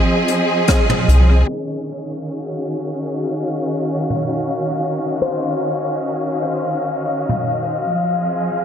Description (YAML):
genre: ambient dub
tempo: 75 BPM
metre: 4/4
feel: straight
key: Eb dorian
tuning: A4 = 440 Hz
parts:
  - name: clear symphonic string section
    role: sustained chords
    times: 0.0-8.6 s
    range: Eb3 to Eb5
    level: -20 LUFS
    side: equal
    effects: none
  - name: wind-like tuned noise texture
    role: texture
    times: 0.0-8.6 s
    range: Eb5 to F5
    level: -24 LUFS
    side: left 1 dB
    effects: built-in reverb
  - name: jazz brush drum kit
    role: drums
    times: 0.3-7.4 s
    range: hi-hat, rim click, toms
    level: -23 LUFS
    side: right 1 dB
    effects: dub echo
  - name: electronic kick drum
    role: drums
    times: 0.7-0.9 s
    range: none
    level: -18 LUFS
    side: equal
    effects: none
  - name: soft dub sub bass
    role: bass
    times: 1.1-1.4 s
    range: C2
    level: -10 LUFS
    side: equal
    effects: none
  - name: handpan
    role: arpeggios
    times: 5.2-8.6 s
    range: C5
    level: -26 LUFS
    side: left 3 dB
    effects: low-pass filter, dub echo
room: moderate huge ambient reverb, RT60 5.0 s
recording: low-pass filter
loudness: -17 LUFS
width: side -8 dB against mid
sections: 0.0-1.5 A section; 1.5-8.6 B section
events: band accent 0.7-1.1; filter sweep on handpan 1.5-8.6; filter sweep 1.5-8.6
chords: 0.0 Fm7; 1.5 Ebm7; 7.9 Fm7